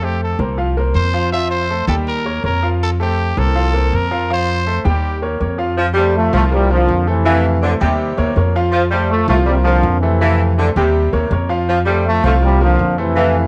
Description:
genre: latin.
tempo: 162 BPM.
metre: 4/4.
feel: straight.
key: F major.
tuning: A4 = 441 Hz.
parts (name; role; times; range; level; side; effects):
growling trumpet; melody; 0.0-5.2 s; G4 to E5; -24 LUFS; equal; cassette tape, analog delay.
bright upright piano; accompaniment; 0.0-13.5 s; F3 to G5; -23 LUFS; equal; cassette tape.
upright bass; bass; 0.0-13.5 s; C2 to F2; -19 LUFS; equal; none.
clear saxophone section; second line; 5.8-13.4 s; C3 to G3; -21 LUFS; equal; cassette tape.
brilliant trombone section; melody; 6.2-13.5 s; C3 to A3; -20 LUFS; equal; cassette tape.
room: light reverb, small room ambience.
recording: home recording on cassette.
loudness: -16 LUFS.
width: mono.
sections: 0.0-5.8 A section; 5.8-13.5 B section.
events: none.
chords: 0.0 F; 0.6 C7sus4; 1.3 F; 2.1 Eb7; 2.8 F; 3.6 C7sus4; 4.3 F; 5.0 Eb7; 5.8 F; 6.5 C7sus4; 7.3 Fmaj7; 8.0 Eb7; 8.7 F; 9.5 C7sus4; 10.2 Fmaj7; 11.0 Eb7; 11.7 F; 12.4 C7sus4.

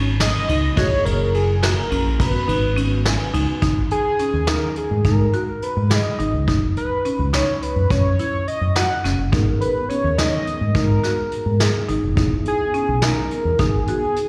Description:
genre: progressive instrumental, band music in an uneven meter.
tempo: 211 BPM (eighths).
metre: 5/8.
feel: straight.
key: G# minor.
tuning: A4 = 440 Hz.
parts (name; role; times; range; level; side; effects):
bell-like tine electric piano; accompaniment; 0.0-3.6, 9.3-14.3 s; A#3 to G#5; -33 LUFS; equal; ensemble chorus, slapback echo.
buzzing marimba with hard mallets; arpeggios; 0.0-14.2 s; C#4 to G#4; -28 LUFS; equal; slapback echo.
fingered electric bass; bass; 0.0-13.8 s; E1 to G#2; -22 LUFS; equal; none.
pulse-width lead; melody; 0.2-14.3 s; G#4 to F#5; -25 LUFS; equal; chorus, slapback echo.
vintage brush drum kit; drums; 0.2-14.3 s; hi-hat, kick drum, ride cymbal, snare drum; -25 LUFS; equal; slapback echo.
room: light reverb.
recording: live gig heard through the venue's PA, recital hall reverb.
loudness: -20 LUFS.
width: mono.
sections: 0.0-3.6 A section; 3.6-14.3 B section.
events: tine electric piano fill 2.8-3.6.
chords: 0.0 G#m7; 0.8 F#7; 2.2 G#m7; 3.6 G#sus2; 6.5 F#sus4; 9.3 G#madd9; 12.2 E; 13.6 G#m.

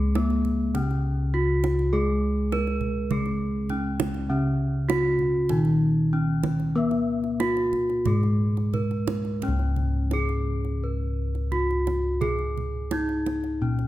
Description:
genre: Javanese gamelan.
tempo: 86-102 BPM.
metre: 4/4.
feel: straight.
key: Db slendro.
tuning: A4 = 435 Hz.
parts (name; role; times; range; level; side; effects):
gamelan-type bronze metallophone; melody; 0.0-13.9 s; Cb4-45c to Cb5-45c; -27 LUFS; equal; none.
gamelan-type bronze metallophone; accompaniment; 0.0-9.4 s; Db3 to Cb4-45c; -26 LUFS; equal; none.
gamelan-type bossed gongs; bass; 0.0-13.9 s; Db2 to Cb5-45c; -27 LUFS; left 1 dB; none.
kendang; percussion; 0.2-13.9 s; none; -33 LUFS; right 6 dB; none.
room: moderate recital hall reverb, RT60 1.7 s.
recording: none.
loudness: -22 LUFS.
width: side -15 dB against mid.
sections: 0.0-9.4 A section; 9.4-13.9 B section.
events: none.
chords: none.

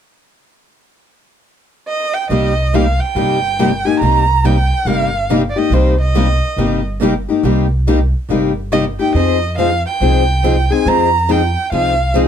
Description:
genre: acoustic string swing (jazz manouche).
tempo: 140 BPM.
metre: 4/4.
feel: swing 63% on 8ths.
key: C minor.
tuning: A4 = 436 Hz.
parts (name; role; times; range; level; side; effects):
warm violin; melody; 1.9-12.1 s; C5 to Bb5; -18 LUFS; right 3 dB; plate reverb.
picked steel-string acoustic guitar; accompaniment; 2.3-12.3 s; C3 to Ab4; -16 LUFS; left 6 dB; none.
picked steel-string acoustic guitar; accompaniment; 2.3-12.3 s; C3 to Ab4; -20 LUFS; right 6 dB; none.
upright bass; bass; 2.3-12.3 s; G1 to F2; -17 LUFS; equal; none.
room: light reverb.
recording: dark, warm production.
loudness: -12 LUFS.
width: side -8 dB against mid.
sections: 0.6-2.3 A section; 2.3-12.3 B section.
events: none.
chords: 0.6 N.C.; 2.3 Cm7; 9.1 Fm7.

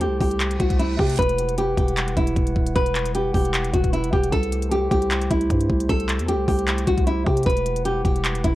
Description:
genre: hip hop, trap.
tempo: 153 BPM.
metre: 4/4.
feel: half-time.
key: E minor.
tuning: A4 = 440 Hz.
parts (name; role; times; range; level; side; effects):
nylon-string guitar; melody; 0.0-8.6 s; E4 to B4; -23 LUFS; equal; tape echo.
glass harmonica; sustained chords; 0.0-8.6 s; G3 to F#5; -32 LUFS; equal; none.
growling 808-style bass; bass; 0.0-8.6 s; D#1 to C3; -25 LUFS; equal; none.
trap drum kit; drums; 0.0-8.5 s; handclaps, hi-hat, kick drum; -23 LUFS; equal; none.
reverse cymbal; sound effects; 0.5-1.2 s; none; -35 LUFS; right 4 dB; none.
room: little or no reverb.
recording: dry, gritty hardware recording, cassette tape.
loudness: -19 LUFS.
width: side -16 dB against mid.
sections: 0.0-1.2 A section; 1.2-8.6 B section.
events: reverse cymbal 0.5-1.2.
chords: 0.0 C6; 1.2 Emadd9; 4.3 C6; 7.5 Emadd9.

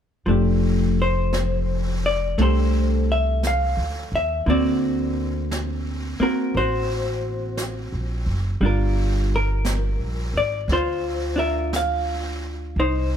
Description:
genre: jazz ballad.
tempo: 58 BPM.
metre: 4/4.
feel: swing 66% on 8ths.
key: F major.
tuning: A4 = 440 Hz.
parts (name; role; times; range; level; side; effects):
vintage hollow-body jazz guitar; accompaniment; 0.3-13.2 s; D3 to F5; -23 LUFS; left 1 dB; none.
upright bass; bass; 0.3-13.2 s; F1 to Eb2; -24 LUFS; equal; none.
jazz brush drum kit; drums; 0.3-13.2 s; brushed snare drum, hi-hat, snare drum; -34 LUFS; right 2 dB; none.
room: light reverb.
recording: close, detailed microphones.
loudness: -20 LUFS.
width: side -8 dB against mid.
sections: 0.3-13.2 A section.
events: none.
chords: 0.3 F69; 4.5 D7b13; 8.6 Gm7.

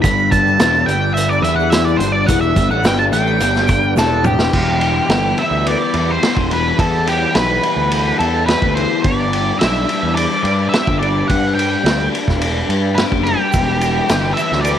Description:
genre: psychedelic rock.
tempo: 107 BPM.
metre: 4/4.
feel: straight.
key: E minor.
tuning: A4 = 438 Hz.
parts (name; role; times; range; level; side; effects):
octave-fuzz lead guitar; melody; 0.0-14.8 s; G4 to B5; -18 LUFS; right 1 dB; distortion, slapback echo.
tonewheel organ; sustained chords; 0.0-14.8 s; G3 to B5; -28 LUFS; right 14 dB; slow rotary speaker, overdrive, chorus vibrato.
crunchy overdriven guitar; riff; 0.0-14.8 s; E2 to G4; -21 LUFS; left 15 dB; flanger.
fuzz picked electric bass; bass; 0.0-14.7 s; E1 to G2; -19 LUFS; right 1 dB; overdrive.
vintage drum kit; drums; 0.0-14.8 s; crash cymbal, hi-hat, kick drum, ride cymbal, snare drum, toms; -19 LUFS; right 1 dB; none.
tube shaker; percussion; 0.0-4.5, 13.5-14.8 s; none; -38 LUFS; right 21 dB; none.
room: studio ambience.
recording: 1960s-style stereo with parts hard left and right.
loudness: -13 LUFS.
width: side -10 dB against mid.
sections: 0.0-4.5 A section; 4.5-14.8 B section.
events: lead electric guitar solo 0.0-4.5; drum fill 4.0-4.5.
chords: 0.0 Gadd9/E; 4.5 Em; 9.0 G; 13.5 Em.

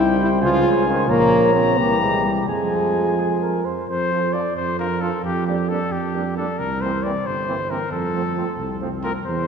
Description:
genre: classical, brass quintet.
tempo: 89 BPM (dotted quarters).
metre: 6/8.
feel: rubato.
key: F minor, F major from 3.9 s.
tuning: A4 = 440 Hz.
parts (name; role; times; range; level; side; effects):
warm trumpet; melody; 0.0-9.5 s; G4 to Bb5; -24 LUFS; left 4 dB; none.
mellow flugelhorn; second line; 0.0-9.1 s; C4 to Db5; -27 LUFS; right 3 dB; none.
brilliant trombone; accompaniment; 0.0-9.1 s; Db3 to Ab3; -29 LUFS; right 4 dB; none.
warm French horn; accompaniment; 0.0-9.1 s; F3 to F4; -23 LUFS; left 2 dB; none.
mellow tuba; bass; 0.0-9.5 s; G1 to F2; -24 LUFS; right 3 dB; none.
room: wet concert hall reverb, RT60 2.5 s.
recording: minimal, uncompressed stereo recording.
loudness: -18 LUFS.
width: side -6 dB against mid.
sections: 0.0-3.9 A section; 3.9-9.5 B section.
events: none.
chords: 0.4 Db; 1.1 Bbm; 1.8 C7; 2.5 Fm; 3.9 F; 4.6 F6; 5.2 Gm7/F; 6.6 C7; 7.9 F.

